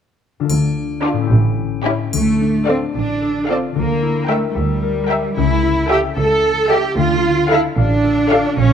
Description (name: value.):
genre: cinematic, playful, whimsical film cue.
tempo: 74 BPM (dotted quarters).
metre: 6/8.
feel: straight.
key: D minor.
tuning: A4 = 440 Hz.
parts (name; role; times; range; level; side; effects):
concert harp; arpeggios; 0.4-8.7 s; A2 to F5; -22 LUFS; left 10 dB; none.
clear studio double bass section; bass; 0.5-8.7 s; A1 to D2; -20 LUFS; right 3 dB; none.
warm studio cello section; bass; 0.5-8.7 s; A2 to A4; -18 LUFS; right 2 dB; none.
triangle; percussion; 0.5-3.2 s; none; -32 LUFS; left 3 dB; none.
warm studio violin section; melody; 1.0-8.5 s; G4 to G5; -26 LUFS; left 3 dB; none.
rich studio violin section; second line; 1.0-8.5 s; E4 to F5; -23 LUFS; left 2 dB; none.
rich studio viola section; accompaniment; 1.0-8.5 s; C#4 to Bb4; -22 LUFS; right 1 dB; none.
room: moderate scoring stage reverb, RT60 1.6 s.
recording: none.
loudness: -14 LUFS.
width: side -8 dB against mid.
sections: 0.5-2.1 A section; 2.1-8.7 B section.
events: none.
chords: 0.5 Dm; 1.3 A7; 2.1 Dm; 3.7 Em7b5/D; 5.4 A7/C#; 7.0 Dm.